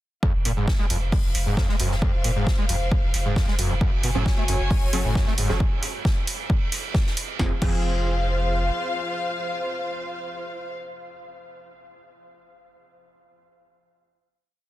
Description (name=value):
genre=driving peak-time techno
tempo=134 BPM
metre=4/4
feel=straight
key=F phrygian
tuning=A4 = 437 Hz
part: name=screaming distorted acid line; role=riff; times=0.2-7.7 s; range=F2 to A3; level=-28 LUFS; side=equal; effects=distortion, ensemble chorus, sidechain pumping, tape echo
part: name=electronic kick drum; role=drums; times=0.2-7.8 s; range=none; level=-22 LUFS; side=equal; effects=none
part: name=soft-mallet drum kit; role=drums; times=0.2-7.4 s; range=hi-hat, ride cymbal, snare drum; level=-36 LUFS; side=right 3 dB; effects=high-pass filter on cymbals, high-pass filter on hats, high-pass filter on snare, high-pass filter on room
part: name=dark studio string section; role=texture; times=0.2-10.7 s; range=F4 to Ab5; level=-31 LUFS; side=left 2 dB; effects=sidechain pumping
part: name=warm sub bass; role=bass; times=0.3-8.7 s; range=F1 to Gb1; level=-26 LUFS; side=equal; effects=overdrive, sidechain pumping, low-pass filter
part: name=punchy analog drum machine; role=drums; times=0.5-7.8 s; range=crash cymbal, hi-hat, snare drum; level=-30 LUFS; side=right 2 dB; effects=none
part: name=rave stab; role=stabs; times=4.2-10.8 s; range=F3 to A4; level=-33 LUFS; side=right 2 dB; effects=chorus, built-in reverb, sidechain pumping, tape echo
room=studio reverb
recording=dense, heavily limited modern master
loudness=-21 LUFS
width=side -15 dB against mid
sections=0.2-7.4 groove; 7.4-11.0 final chord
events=fade-in on string section 0.2-5.6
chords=0.2 Fm; 3.8 Gbm; 7.4 Fm